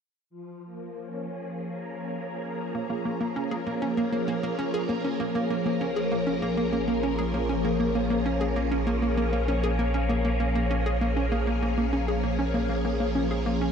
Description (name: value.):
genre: ambient, sequencer-driven space music.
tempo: 98 BPM.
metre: 4/4.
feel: straight.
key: Bb minor.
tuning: A4 = 440 Hz.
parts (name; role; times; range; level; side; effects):
phased string machine; sustained chords; 0.3-13.7 s; F3 to Bb4; -28 LUFS; left 1 dB; ensemble chorus, phaser.
hollow square pluck; riff; 2.7-13.7 s; Bb3 to Ab4; -29 LUFS; right 1 dB; chorus, analog delay.
round analog bass; bass; 5.2-13.7 s; Bb1; -29 LUFS; equal; none.
room: moderate huge ambient reverb, RT60 9.1 s.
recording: dark, warm production.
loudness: -24 LUFS.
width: side -7 dB against mid.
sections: 0.3-5.2 A section; 5.2-13.7 B section.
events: filter sweep on string machine 0.3-5.2.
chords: 0.3 Bbm7.